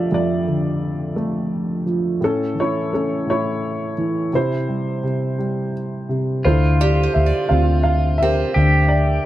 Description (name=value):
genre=acoustic folk-pop ballad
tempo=57 BPM (dotted quarters)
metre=6/8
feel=straight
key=unclear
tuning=A4 = 442 Hz
part: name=warm upright piano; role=melody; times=0.0-9.3 s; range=F2 to F5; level=-19 LUFS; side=equal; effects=none
part: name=pedal steel guitar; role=second line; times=6.4-9.3 s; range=F4 to G4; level=-24 LUFS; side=right 1 dB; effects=none
part: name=vintage muted fingered electric bass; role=bass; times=6.5-9.2 s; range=D2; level=-17 LUFS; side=equal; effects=none
part: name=picked acoustic archtop guitar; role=arpeggios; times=6.8-8.9 s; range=C4 to D5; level=-24 LUFS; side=right 4 dB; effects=none
room=light reverb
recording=none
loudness=-17 LUFS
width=side -14 dB against mid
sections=0.0-6.4 A section; 6.4-9.3 B section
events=none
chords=0.0 Dm/F; 2.2 A; 4.3 C; 6.4 Fmaj7/D; 8.6 C7/D